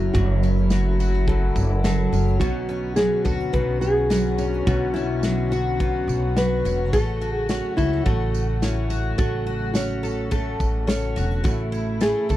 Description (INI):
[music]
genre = acoustic pop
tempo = 106 BPM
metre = 4/4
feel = straight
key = unclear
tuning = A4 = 441 Hz
[part]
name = nylon-string guitar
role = melody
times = 0.0-12.4 s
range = E4 to B4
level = -26 LUFS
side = equal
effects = none
[part]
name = picked twelve-string acoustic guitar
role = accompaniment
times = 0.0-12.4 s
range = F#2 to A4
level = -26 LUFS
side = left 1 dB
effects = none
[part]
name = warm studio string section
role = sustained chords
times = 0.0-12.4 s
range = C#3 to F#4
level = -33 LUFS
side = right 1 dB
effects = none
[part]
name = upright bass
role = bass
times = 0.0-12.4 s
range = E1 to D2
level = -24 LUFS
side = equal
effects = none
[part]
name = modern studio drum kit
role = drums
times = 0.1-12.4 s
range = kick drum, shaker, snare drum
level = -24 LUFS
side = equal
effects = none
[part]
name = tambourine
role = percussion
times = 0.2-12.4 s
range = none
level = -41 LUFS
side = right 24 dB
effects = none
[sound]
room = little or no reverb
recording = dry, close 1970s-style studio recording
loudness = -20 LUFS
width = side -14 dB against mid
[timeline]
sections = 0.0-12.4 A section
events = none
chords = 0.0 F#m; 2.4 Bmadd9; 6.9 F#m/A; 11.4 A